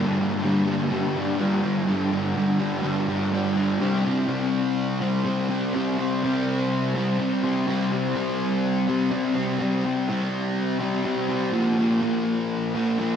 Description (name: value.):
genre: rock.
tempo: 124 BPM.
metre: 4/4.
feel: straight.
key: unclear.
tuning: A4 = 440 Hz.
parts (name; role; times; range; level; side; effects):
fuzz guitar; solo; 0.0-13.2 s; G2 to C4; -22 LUFS; equal; distortion, wide subtle chorus, analog delay.
room: wet lush hall reverb, RT60 2.8 s.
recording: dreamy mix soaked in reverb.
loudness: -22 LUFS.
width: side -8 dB against mid.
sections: 0.0-3.8 A section; 3.8-13.2 B section.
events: none.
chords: 0.0 G5; 3.8 C5; 11.5 Bb5.